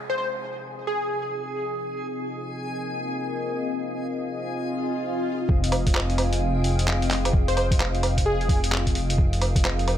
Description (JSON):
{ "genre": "future garage", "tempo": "130 BPM", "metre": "4/4", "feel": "swing 63% on 16ths", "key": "F minor", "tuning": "A4 = 440 Hz", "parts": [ { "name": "dark analog pad", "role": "sustained chords", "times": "0.0-10.0 s", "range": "C4 to F5", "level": "-30 LUFS", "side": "left 1 dB", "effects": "chorus, phaser, sidechain pumping" }, { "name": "downlifter and swell", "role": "sound effects", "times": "0.0-5.5 s", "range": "none", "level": "-36 LUFS", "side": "left 1 dB", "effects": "none" }, { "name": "backwards swelling texture", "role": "texture", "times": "0.0-10.0 s", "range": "Ab4 to Ab5", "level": "-35 LUFS", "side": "equal", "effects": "built-in reverb" }, { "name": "plucky unison lead", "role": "melody", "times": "0.1-1.3, 7.5-8.7 s", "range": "Ab4 to C5", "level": "-28 LUFS", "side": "equal", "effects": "analog chorus, digital delay" }, { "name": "dark detuned saw bass", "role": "bass", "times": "5.5-10.0 s", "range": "F1", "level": "-24 LUFS", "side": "equal", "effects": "sidechain pumping" }, { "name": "electronic kick drum", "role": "drums", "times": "5.5-9.6 s", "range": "none", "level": "-22 LUFS", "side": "equal", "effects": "none" }, { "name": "lo-fi sampler-style drum kit", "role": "drums", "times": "5.6-10.0 s", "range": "handclaps, hi-hat, woodblock", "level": "-27 LUFS", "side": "right 1 dB", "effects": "none" } ], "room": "light reverb", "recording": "none", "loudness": "-22 LUFS", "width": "side -11 dB against mid", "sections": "0.0-5.5 A section; 5.5-10.0 B section", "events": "filter sweep on analog synth pad 0.0-5.5; swell 4.7-5.5", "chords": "0.0 Fm7", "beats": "0.41 0.88 1.34 | 1.80 2.26 2.72 3.18 | 3.65 4.11 4.57 5.03 | 5.49 5.95 6.41 6.88 | 7.34 7.80 8.26 8.72 | 9.18 9.64" }